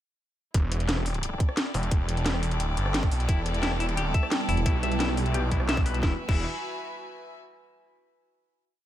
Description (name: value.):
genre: dark technical drum and bass.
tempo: 175 BPM.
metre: 4/4.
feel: straight.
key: E minor.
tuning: A4 = 439 Hz.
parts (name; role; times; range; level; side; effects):
snarling distorted saw bass; bass; 0.5-6.4 s; E1 to B1; -28 LUFS; equal; distortion, overdrive, sidechain pumping.
drum and bass drum kit; drums; 0.5-6.4 s; crash cymbal, hi-hat, rim click, snare drum; -31 LUFS; equal; none.
electronic kick drum; drums; 0.5-6.4 s; none; -25 LUFS; equal; none.
rich chamber string section; texture; 0.5-7.4 s; E4 to G#5; -35 LUFS; left 1 dB; sidechain pumping.
dark analog pad; sustained chords; 3.8-6.2 s; G3 to E4; -34 LUFS; right 3 dB; chorus, vintage 12-bit sampler grit, sidechain pumping.
clean electric guitar; arpeggios; 3.3-6.4 s; E4 to E5; -34 LUFS; left 6 dB; sidechain pumping, ping-pong delay.
growling FM bass; bass; 4.5-4.6 s; E1; -25 LUFS; equal; none.
room: digital ambience.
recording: none.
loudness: -24 LUFS.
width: side -12 dB against mid.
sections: 0.5-6.0 drop; 6.0-7.4 final chord.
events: drop 0.5-6.0.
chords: 0.5 Em; 6.0 E.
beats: | 0.55 0.89 1.23 1.57 | 1.92 2.26 2.60 2.94 | 3.29 3.63 3.97 4.32 | 4.66 5.00 5.34 5.69 | 6.03 6.37 6.72 7.06.